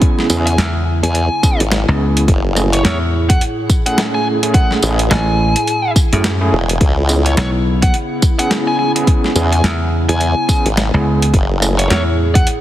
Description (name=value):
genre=glitch hop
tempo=106 BPM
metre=4/4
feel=swing 59% on 16ths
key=C# minor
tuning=A4 = 444 Hz
part: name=warbly tape-like pad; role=sustained chords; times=0.0-12.6 s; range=A2 to G#4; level=-23 LUFS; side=equal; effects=chorus, built-in reverb, sidechain pumping
part: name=overdriven tine electric piano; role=stabs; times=0.0-11.7 s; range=A3 to G#4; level=-21 LUFS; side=right 1 dB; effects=fast tremolo, vintage 12-bit sampler grit, sidechain pumping, ping-pong delay
part: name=boom bap sampler-style drum kit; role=drums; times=0.0-12.6 s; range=hi-hat, rim click, snare drum, tambourine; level=-20 LUFS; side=right 1 dB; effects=overdrive
part: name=electronic kick drum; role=drums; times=0.0-12.4 s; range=none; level=-13 LUFS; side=equal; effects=none
part: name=formant-sweep wobble bass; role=bass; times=0.3-11.9 s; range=E1 to E2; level=-15 LUFS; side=equal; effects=chorus
part: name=biting lead guitar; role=melody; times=0.5-12.5 s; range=C#5 to G#5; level=-21 LUFS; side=left 1 dB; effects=overdrive, ping-pong delay
part: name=dry thumbed slap bass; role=bass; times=0.6-12.5 s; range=A1 to F#2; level=-15 LUFS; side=equal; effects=none
room=light reverb, digital ambience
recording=heavily compressed radio sound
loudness=-12 LUFS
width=side -13 dB against mid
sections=0.0-12.6 A section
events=none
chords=0.0 C#m7; 2.3 F#m9; 6.8 C#m7; 11.3 F#m9